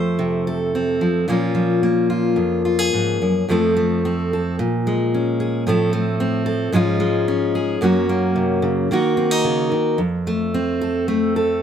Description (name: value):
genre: folk, solo fingerstyle acoustic guitar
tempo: 110 BPM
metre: 4/4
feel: straight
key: unclear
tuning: A4 = 441 Hz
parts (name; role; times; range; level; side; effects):
- fingerpicked steel-string acoustic guitar; solo; 0.0-11.6 s; F2 to C5; -17 LUFS; equal; none
room: light reverb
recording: close, detailed microphones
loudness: -17 LUFS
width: side -8 dB against mid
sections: 0.0-3.5 A section; 3.5-11.6 B section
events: none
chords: 0.0 F; 1.3 Bbm; 3.5 F; 4.6 Bbm7; 5.7 F/A; 6.7 Db/Ab; 7.8 Gb; 8.9 Ebm; 10.0 F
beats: 0.19 0.74 | 1.28 1.83 2.37 2.92 | 3.48 4.02 4.57 5.11 | 5.66 6.20 6.74 7.28 | 7.82 8.36 8.91 9.45 | 9.99 10.54 11.08